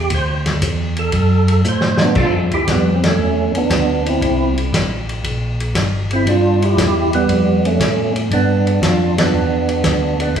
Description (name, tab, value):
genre	soul jazz organ trio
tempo	117 BPM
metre	4/4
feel	swing 69% on 8ths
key	G mixolydian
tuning	A4 = 443 Hz
part	percussive tonewheel organ	melody	0.0-10.4 s	G3 to C5	-17 LUFS	right 3 dB	slow rotary speaker, chorus vibrato
part	mellow tonewheel organ	bass	0.0-10.4 s	G1 to A2	-18 LUFS	equal	overdrive, chorus vibrato, slow rotary speaker
part	warm soul drum kit	drums	0.1-10.4 s	crash cymbal, hi-hat, kick drum, ride cymbal, snare drum	-20 LUFS	left 1 dB	none
room	wet recital hall reverb, RT60 1.7 s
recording	recorded in a church or concert hall, small room ambience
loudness	-14 LUFS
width	side -8 dB against mid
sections	0.0-2.2 A section; 2.2-10.4 B section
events	tonewheel organ solo 0.0-2.2; drum fill 1.6-2.2; band accent 2.9, 9.1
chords	0.1 D; 2.2 G7; 4.2 C5; 6.3 G7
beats	| 0.12 0.63 1.14 1.65 | 2.16 2.67 3.19 3.70 | 4.21 4.72 5.24 5.75 | 6.26 6.77 7.29 7.80 | 8.31 8.82 9.33 9.85 | 10.36